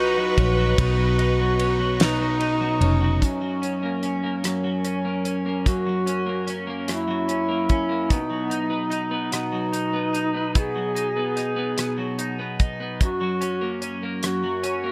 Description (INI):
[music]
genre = six-eight pop ballad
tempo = 49 BPM (dotted quarters)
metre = 6/8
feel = straight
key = F# mixolydian from 3.2 s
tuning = A4 = 440 Hz
[part]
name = mellow duduk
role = melody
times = 0.0-14.9 s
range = C#4 to G#4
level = -28 LUFS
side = equal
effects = digital delay
[part]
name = warm chamber violin section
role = second line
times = 0.0-2.8 s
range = B4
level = -33 LUFS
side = equal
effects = none
[part]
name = twelve-string electric guitar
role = accompaniment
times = 0.0-14.9 s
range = F#2 to D#4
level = -29 LUFS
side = equal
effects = double-tracked
[part]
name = muted studio string section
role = sustained chords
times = 0.0-3.2 s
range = B4 to C#6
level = -33 LUFS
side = equal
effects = none
[part]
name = vintage muted fingered electric bass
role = bass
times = 0.0-3.2 s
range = E#1 to B1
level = -24 LUFS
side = equal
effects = none
[part]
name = damped 70s drum kit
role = drums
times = 0.4-14.8 s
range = hi-hat, kick drum, ride cymbal, rim click, snare drum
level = -26 LUFS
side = equal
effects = none
[sound]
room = small room ambience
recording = none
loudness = -24 LUFS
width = mono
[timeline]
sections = 0.0-3.2 A section; 3.2-14.9 B section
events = none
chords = 0.0 Badd9; 3.2 F#; 8.1 B; 13.0 F#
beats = | 0.78 2.00 | 3.22 4.44 | 5.66 6.89 | 8.11 9.34 | 10.56 11.78 | 13.01 14.23